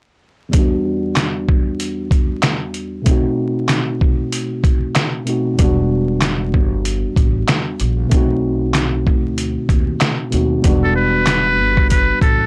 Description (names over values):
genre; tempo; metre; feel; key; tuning
hip hop, boom-bap hip-hop; 95 BPM; 4/4; swing 58% on 16ths; E minor; A4 = 441 Hz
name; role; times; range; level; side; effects
tine electric piano; accompaniment; 0.5-12.5 s; E2 to F#4; -22 LUFS; equal; cassette tape, high-pass filter, low-pass filter
trip hop sampler-style drum kit; drums; 0.5-12.4 s; handclaps, hi-hat, kick drum, snare drum; -18 LUFS; equal; none
upright bass; bass; 5.6-12.5 s; E1 to D#2; -22 LUFS; equal; transformer saturation
trumpet with metal mute; melody; 10.8-12.5 s; A4 to B4; -18 LUFS; equal; high-pass filter, low-pass filter
room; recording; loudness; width
light reverb; blown-out, overdriven recording, vinyl crackle, overdrive; -17 LUFS; mono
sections
0.5-10.6 A section; 10.6-12.5 B section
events
filter sweep on tine electric piano 0.5-10.6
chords
0.5 Em7; 3.1 B7b9; 5.6 Em7; 8.1 B7b9; 10.6 Em7